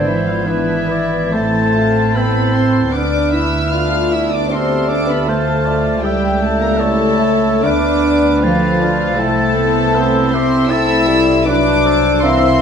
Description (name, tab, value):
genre	classical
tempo	77 BPM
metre	4/4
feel	uneven beats, rubato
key	unclear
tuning	A4 = 440 Hz
part	warm studio violin section	melody	0.0-12.6 s	E5 to F6	-22 LUFS	left 2 dB	none
part	mellow hollow concert flute	second line	0.0-12.6 s	E6 to A6	-25 LUFS	left 2 dB	none
part	mellow oboe	second line	0.0-12.6 s	G4 to E5	-24 LUFS	right 1 dB	none
part	warm clarinet	second line	0.0-12.6 s	A4 to E5	-25 LUFS	left 2 dB	none
part	warm studio violin section	second line	0.0-12.6 s	E4 to F5	-23 LUFS	left 4 dB	none
part	mellow bassoon	accompaniment	0.0-12.6 s	G3 to D4	-23 LUFS	right 3 dB	none
part	warm studio viola section	accompaniment	0.0-12.6 s	E3 to G4	-22 LUFS	right 2 dB	none
part	mellow French horn section	sustained chords	0.0-12.6 s	E3 to F4	-19 LUFS	left 5 dB	none
part	warm studio cello section	bass	0.0-12.6 s	E3 to F4	-22 LUFS	right 2 dB	none
part	warm studio double bass section	bass	0.0-12.6 s	G#1 to D2	-21 LUFS	right 3 dB	none
room	wet recital hall reverb, RT60 1.4 s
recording	dark, warm production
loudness	-12 LUFS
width	side -7 dB against mid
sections	0.0-12.6 A section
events	none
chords	0.0 E7/G#; 1.3 Am; 2.9 Dm7; 6.0 A7/C#; 7.6 Dm7; 9.2 Am/C